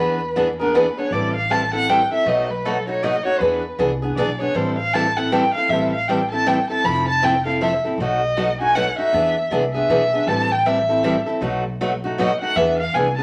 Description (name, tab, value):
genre	acoustic string swing (jazz manouche)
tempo	157 BPM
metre	3/4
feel	swing 61% on 8ths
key	A minor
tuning	A4 = 439 Hz
part	dark violin	second line	0.0-13.2 s	A4 to B5	-22 LUFS	equal	none
part	picked steel-string acoustic guitar	accompaniment	0.0-13.2 s	B2 to A4	-24 LUFS	equal	none
part	upright bass	bass	0.0-13.2 s	F1 to E2	-31 LUFS	equal	none
room	wet studio reverb, RT60 0.8 s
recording	vinyl crackle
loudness	-20 LUFS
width	mono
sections	0.0-5.7 A section; 5.7-13.2 A section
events	violin solo 0.0-13.2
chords	0.0 E7; 1.1 Am7; 2.3 B7; 3.4 E7; 4.6 Am7; 6.8 Fmaj7; 8.0 B7; 9.1 E7; 10.3 Am7; 11.4 B7; 12.6 E7